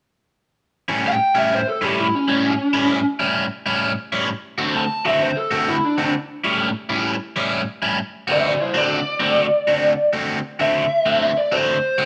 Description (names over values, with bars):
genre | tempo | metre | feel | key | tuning
blues | 130 BPM | 4/4 | swing 66% on 8ths | unclear | A4 = 440 Hz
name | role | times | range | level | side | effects
crunchy overdriven guitar | riff | 0.9-12.1 s | A2 to F#4 | -23 LUFS | equal | phaser
lead guitar through a small cranked amp | melody | 1.1-12.1 s | C#4 to A5 | -21 LUFS | equal | overdrive, slapback echo
room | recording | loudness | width
moderate echo chamber reverb, RT60 1.3 s | none | -20 LUFS | mono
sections
0.6-12.1 A section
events
none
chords
0.6 A7; 4.3 D7; 6.1 A7; 8.0 D7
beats
| 0.59 1.05 1.51 1.97 | 2.43 2.89 3.36 3.82 | 4.28 4.74 5.20 5.67 | 6.13 6.59 7.05 7.51 | 7.97 8.44 8.90 9.36 | 9.82 10.29 10.75 11.21 | 11.67